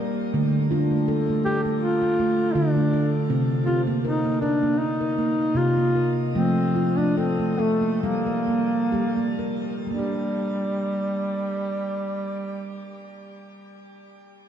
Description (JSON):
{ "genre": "world meditative, meditative tuned percussion", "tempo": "61-81 BPM", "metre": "4/4", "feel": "swing 54% on 16ths", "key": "G minor", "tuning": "A4 = 440 Hz", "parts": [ { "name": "handpan", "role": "arpeggios", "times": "0.0-13.1 s", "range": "C3 to Bb4", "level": "-23 LUFS", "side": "right 1 dB", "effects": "shimmer reverb" }, { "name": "warm duduk", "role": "melody", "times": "1.5-13.0 s", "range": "G3 to G4", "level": "-26 LUFS", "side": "left 1 dB", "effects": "shimmer reverb" } ], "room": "wet recital hall reverb, RT60 1.6 s, small room ambience", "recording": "dark, warm production", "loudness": "-21 LUFS", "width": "side -9 dB against mid", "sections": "0.0-9.9 A section; 9.9-13.8 B section", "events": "slowing down 3.3-9.9", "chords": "0.3 Dm; 3.3 Cm; 6.3 F; 8.0 Gm" }